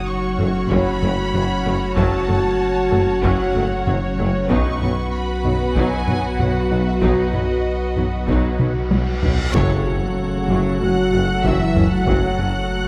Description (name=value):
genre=cinematic, hybrid orchestral and electronic film score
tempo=95 BPM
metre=4/4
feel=straight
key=F# dorian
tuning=A4 = 439 Hz
part: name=warm symphonic violin section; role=melody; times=0.0-12.9 s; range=C#5 to F#6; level=-32 LUFS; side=equal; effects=none
part: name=rich symphonic violin section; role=second line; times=0.0-12.9 s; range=F#4 to F#5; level=-30 LUFS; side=equal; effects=none
part: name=dark French horn section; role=sustained chords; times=0.0-12.9 s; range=C#3 to F#4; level=-27 LUFS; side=equal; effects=none
part: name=icy glass pad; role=sustained chords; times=0.0-12.9 s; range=F#3 to F#5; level=-28 LUFS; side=equal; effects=chorus, built-in reverb
part: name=saturated sub bass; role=bass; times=0.0-12.9 s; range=F#1 to B1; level=-29 LUFS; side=equal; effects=none
part: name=rich symphonic viola section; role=accompaniment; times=0.4-12.9 s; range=F#3 to A4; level=-30 LUFS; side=equal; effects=none
part: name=thumb-piano-like synth pluck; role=arpeggios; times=0.4-12.6 s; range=F#3 to F#4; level=-32 LUFS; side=equal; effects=none
part: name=clear tuba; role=bass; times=0.4-12.5 s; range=F#1 to B1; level=-31 LUFS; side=equal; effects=none
part: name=rich studio cello section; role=bass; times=0.4-12.5 s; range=F#2 to B2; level=-30 LUFS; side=equal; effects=none
part: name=warm symphonic double bass section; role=bass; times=0.4-12.5 s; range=F#1 to B1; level=-30 LUFS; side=equal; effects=none
part: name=solo taiko drums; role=drums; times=0.4-12.7 s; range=none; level=-26 LUFS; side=equal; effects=none
part: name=reverse cymbal and impact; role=sound effects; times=8.7-12.1 s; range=none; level=-34 LUFS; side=equal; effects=none
room=wet scoring stage reverb, RT60 1.7 s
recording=none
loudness=-19 LUFS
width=mono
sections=0.0-9.5 A section; 9.5-12.9 B section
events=drum fill 8.6-9.5; reverse cymbal 8.7-9.5; band accent 9.5-10.2; impact 9.5-12.1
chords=0.0 F#m; 4.5 B; 9.5 F#m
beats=0.07 0.71 1.34 | 1.97 2.60 3.23 3.86 | 4.50 5.13 5.76 6.39 | 7.02 7.65 8.28 8.92 | 9.55 10.18 10.81 11.44 | 12.07 12.71